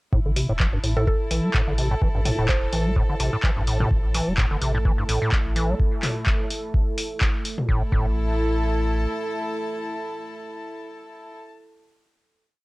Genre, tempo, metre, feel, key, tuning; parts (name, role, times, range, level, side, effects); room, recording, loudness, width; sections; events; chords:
acid house; 127 BPM; 4/4; swing 55% on 16ths; A4 = 441 Hz
acid bass, square; riff; 0.1-8.1 s; G2 to G3; -26 LUFS; equal; overdrive, sidechain pumping, tape echo
warm sub bass; bass; 0.1-9.1 s; E1 to A1; -26 LUFS; equal; sidechain pumping
electronic kick drum; drums; 0.1-8.1 s; -22 LUFS; equal; overdrive
rich chamber string section; texture; 0.1-11.5 s; E4 to A5; -32 LUFS; equal; sidechain pumping
punchy analog drum machine; drums; 0.4-7.7 s; handclaps, hi-hat, toms; -27 LUFS; equal
mallet-like synth pluck; melody; 1.0-2.9 s; A4 to C5; -32 LUFS; right 2 dB; chorus, tape echo
dark analog pad; sustained chords; 4.4-11.3 s; A3 to A4; -32 LUFS; right 2 dB; chorus, sidechain pumping
little or no reverb; dry, gritty hardware recording, cassette tape; -20 LUFS; side -22 dB against mid
0.1-7.7 groove; 7.7-11.5 final chord
filter sweep on acid bass 0.1-5.8
0.1 A5